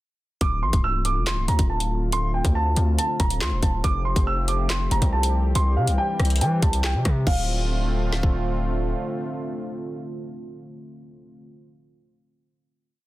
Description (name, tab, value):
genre	hip hop, drill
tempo	140 BPM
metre	4/4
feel	half-time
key	D minor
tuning	A4 = 443 Hz
part	dark concert grand piano	melody	0.4-8.5 s	F5 to E6	-27 LUFS	right 2 dB	low-pass filter
part	dark analog pad	sustained chords	0.4-11.5 s	D3 to G4	-31 LUFS	equal	chorus
part	distorted 808-style bass	bass	0.4-8.9 s	C1 to E3	-23 LUFS	equal	distortion
part	drill drum kit	drums	0.4-8.3 s	crash cymbal, handclaps, hi-hat, kick drum, rim click, snare drum	-24 LUFS	equal	none
room	little or no reverb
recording	dense, heavily limited modern master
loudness	-20 LUFS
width	side -17 dB against mid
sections	0.4-7.3 hook; 7.3-10.7 final chord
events	none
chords	0.4 Dm7; 3.8 Fadd9; 5.6 C; 7.3 Dm7